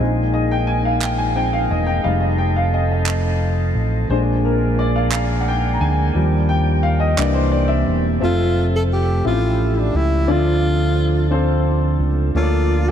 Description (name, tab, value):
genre	slow gospel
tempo	58 BPM (dotted quarters)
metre	6/8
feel	straight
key	F major from 8.2 s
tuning	A4 = 440 Hz
part	warm upright piano	accompaniment	0.0-12.9 s	A2 to Bb5	-22 LUFS	left 3 dB	lush chorus
part	dark woodwind section	sustained chords	0.0-8.2 s	Bb4 to A5	-30 LUFS	equal	none
part	mellow tonewheel organ	sustained chords	0.0-12.9 s	Eb3 to E5	-25 LUFS	right 4 dB	slow rotary speaker
part	fingered electric bass	bass	0.0-12.9 s	Fb1 to Eb2	-18 LUFS	equal	none
part	group handclap	percussion	1.0-7.5 s	none	-29 LUFS	right 6 dB	none
part	breathy tenor saxophone	melody	8.2-12.9 s	D4 to A4	-22 LUFS	equal	ping-pong delay
room	moderate huge ambient reverb, RT60 4.0 s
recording	dreamy mix soaked in reverb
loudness	-16 LUFS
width	side -9 dB against mid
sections	0.0-8.2 A section; 8.2-12.9 B section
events	upright piano solo 0.0-8.2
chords	0.0 Bb7sus4; 2.1 F7; 4.1 Bb7; 6.2 Ebmaj7; 7.2 C7; 8.2 Fmaj7; 9.2 A7b13; 10.3 Dm7; 12.3 Bbmaj7/D